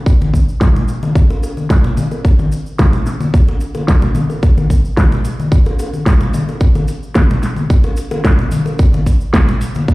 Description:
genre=nu-disco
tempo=110 BPM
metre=4/4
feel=straight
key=none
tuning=none
part: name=electronic kick drum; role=drums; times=0.1-9.9 s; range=none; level=-11 LUFS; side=equal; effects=none
part: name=cabasa, bongos and congas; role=percussion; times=0.1-9.9 s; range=none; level=-18 LUFS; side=left 1 dB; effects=none
part: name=pop drum kit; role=drums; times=0.3-9.7 s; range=hi-hat, snare drum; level=-19 LUFS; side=equal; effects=low-pass filter on hats, low-pass filter on snare
room=light reverb, digital ambience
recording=played on a big sound system in a bare room, large studio reverb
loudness=-11 LUFS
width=side -20 dB against mid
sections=0.0-9.9 A section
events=none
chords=none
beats=| 0.07 0.61 1.16 1.70 | 2.25 2.79 3.34 3.88 | 4.43 4.98 5.52 6.07 | 6.61 7.16 7.70 8.25 | 8.79 9.34 9.88

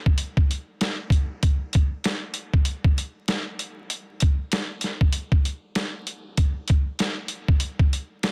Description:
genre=hip hop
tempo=97 BPM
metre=4/4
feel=swing 54% on 16ths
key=none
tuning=none
part: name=boom bap sampler-style drum kit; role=drums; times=0.1-8.3 s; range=hi-hat, kick drum, snare drum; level=-23 LUFS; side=equal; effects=none
room=little or no reverb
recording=dense, heavily limited modern master, vinyl crackle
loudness=-24 LUFS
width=mono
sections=0.0-8.3 A section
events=none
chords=none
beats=0.19 0.81 | 1.43 2.05 2.67 3.28 | 3.90 4.52 5.14 5.76 | 6.38 7.00 7.61 8.23

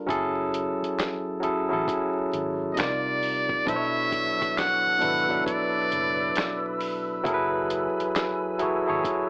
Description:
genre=R&B, neo-soul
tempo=67 BPM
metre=4/4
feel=swing 64% on 16ths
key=F# minor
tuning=A4 = 440 Hz
part: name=barky tine electric piano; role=accompaniment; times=0.0-9.3 s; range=B2 to E5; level=-29 LUFS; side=equal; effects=overdrive, plate reverb
part: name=vintage muted fingered electric bass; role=bass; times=0.1-9.0 s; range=F#1 to C2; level=-44 LUFS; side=equal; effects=none
part: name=dusty soul sampler-style drum kit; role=drums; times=0.1-9.3 s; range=handclaps, hi-hat, kick drum, snare drum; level=-32 LUFS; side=equal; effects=none
part: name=trumpet with metal mute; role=melody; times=2.7-6.8 s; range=D5 to F#5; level=-27 LUFS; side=equal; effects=none
part: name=bright large flute ensemble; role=sustained chords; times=3.7-9.3 s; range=D4 to E6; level=-37 LUFS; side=equal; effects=plate reverb
room=moderate studio ambience, RT60 0.5 s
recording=vinyl crackle, AM radio sound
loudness=-26 LUFS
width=mono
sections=0.0-9.3 A section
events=none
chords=0.1 F#m9; 2.8 Cm11; 3.7 Bm11; 7.2 F#m11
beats=| 0.09 0.98 1.88 2.77 | 3.67 4.56 5.46 6.36 | 7.25 8.15 9.04

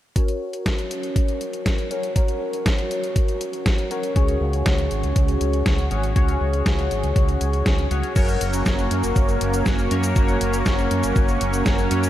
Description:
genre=italo disco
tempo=120 BPM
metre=4/4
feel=straight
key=F# major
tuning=A4 = 440 Hz
part: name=chorused polysynth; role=stabs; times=0.2-12.1 s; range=C#4 to C#5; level=-25 LUFS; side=left 2 dB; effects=diffuse ambient delay
part: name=detuned 8-bit digital drum machine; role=drums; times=0.2-12.1 s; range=cabasa, crash cymbal, hi-hat, snare drum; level=-28 LUFS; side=equal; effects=overdrive
part: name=electronic kick drum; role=drums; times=0.2-11.8 s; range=none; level=-20 LUFS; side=equal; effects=none
part: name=fingered electric bass with an envelope filter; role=bass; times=4.2-12.1 s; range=F#1 to F#2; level=-23 LUFS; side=equal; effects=none
part: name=lush unison pad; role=sustained chords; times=8.2-12.1 s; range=F#3 to C#4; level=-25 LUFS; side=right 2 dB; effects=chorus
room=moderate cathedral reverb, RT60 6.5 s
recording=dreamy mix soaked in reverb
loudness=-19 LUFS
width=side -13 dB against mid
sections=0.2-8.2 A section; 8.2-12.1 B section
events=filter sweep on analog polysynth 0.2-8.2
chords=0.2 F#; 4.2 C#sus4; 8.2 F#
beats=| 0.16 0.66 1.16 1.66 | 2.16 2.66 3.16 3.66 | 4.16 4.66 5.16 5.66 | 6.16 6.66 7.16 7.66 | 8.16 8.66 9.16 9.66 | 10.16 10.66 11.16 11.66

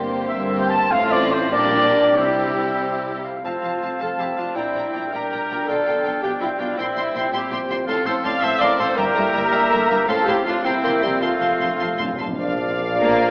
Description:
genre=classical, dramatic, fast romantic movement for symphony orchestra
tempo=91-111 BPM (dotted quarters)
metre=6/8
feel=rubato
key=F major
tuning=A4 = 440 Hz
part: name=warm symphonic violin section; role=melody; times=0.0-13.3 s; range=F4 to C6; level=-30 LUFS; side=equal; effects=none
part: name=clear clarinet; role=second line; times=0.0-13.3 s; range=Bb4 to A5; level=-28 LUFS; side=equal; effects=none
part: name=mellow large flute ensemble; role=second line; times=0.0-13.3 s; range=E5 to F6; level=-28 LUFS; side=equal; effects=none
part: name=warm symphonic violin section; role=second line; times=0.0-13.3 s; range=C4 to Bb5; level=-31 LUFS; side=equal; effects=none
part: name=mellow bassoon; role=accompaniment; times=0.0-13.3 s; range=F3 to D4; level=-28 LUFS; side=equal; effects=none
part: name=rich symphonic viola section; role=accompaniment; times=0.0-13.3 s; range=G3 to F5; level=-26 LUFS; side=equal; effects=none
part: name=dark French horn section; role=sustained chords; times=0.0-13.1 s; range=F3 to E4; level=-30 LUFS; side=equal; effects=none
part: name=concert harp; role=arpeggios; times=0.0-13.3 s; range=F2 to Bb5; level=-28 LUFS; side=equal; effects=none
part: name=warm symphonic cello section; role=bass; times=0.0-13.3 s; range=F2 to Bb3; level=-30 LUFS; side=equal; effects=none
part: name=warm symphonic double bass section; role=bass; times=0.0-13.3 s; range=F1 to C2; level=-35 LUFS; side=equal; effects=none
part: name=bright oboe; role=second line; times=0.3-13.3 s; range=C4 to A5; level=-27 LUFS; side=equal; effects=none
part: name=mellow trumpet section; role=stabs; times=0.3-13.3 s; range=G4 to A5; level=-25 LUFS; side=equal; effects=none
part: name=timpani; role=percussion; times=2.2-2.8, 11.2-12.3 s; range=F2 to C3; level=-32 LUFS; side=equal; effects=none
part: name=clear trombone section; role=sustained chords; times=12.4-13.3 s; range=F3 to D4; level=-30 LUFS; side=equal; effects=none
part: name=warm tuba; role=bass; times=12.4-13.3 s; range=Bb1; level=-25 LUFS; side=equal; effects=none
room=wet concert hall reverb, RT60 2.0 s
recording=AM radio sound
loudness=-18 LUFS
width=side -34 dB against mid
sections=0.0-3.5 A section; 3.5-12.4 B section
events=timpani fill 11.2-12.4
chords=0.0 C5/G; 0.9 F/A; 1.5 Gm/Bb; 2.2 C; 3.5 F; 4.6 Gm/Bb; 5.7 G7/B; 6.8 C7/Bb; 7.9 F/A; 9.0 Edim/G; 10.1 F/A; 10.7 C7; 11.2 F; 12.4 Bb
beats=0.30 | 0.90 1.53 | 2.17 2.82 | 3.46 4.01 | 4.57 5.14 | 5.69 6.23 | 6.78 7.33 | 7.88 8.43 | 8.98 9.53 | 10.09 10.65 | 11.22 11.80 | 12.38 13.01

